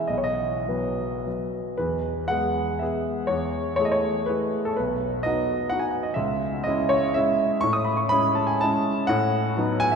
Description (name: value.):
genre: classical, romantic triple-time dance for piano with dotted rhythms.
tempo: 96-131 BPM.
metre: 3/4.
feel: rubato.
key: E major.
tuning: A4 = 438 Hz.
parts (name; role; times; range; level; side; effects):
warm grand piano; solo; 0.0-10.0 s; B1 to D#6; -22 LUFS; equal; none.
room: wet cathedral reverb, RT60 6.5 s.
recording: recorded in a church or concert hall.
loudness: -22 LUFS.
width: side -6 dB against mid.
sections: 0.0-1.8 A section; 1.8-10.0 B section.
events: none.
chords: 0.1 B; 1.8 E; 3.3 Amaj7/E; 4.8 B; 6.2 C#m; 7.6 Amaj7; 9.1 B7/A.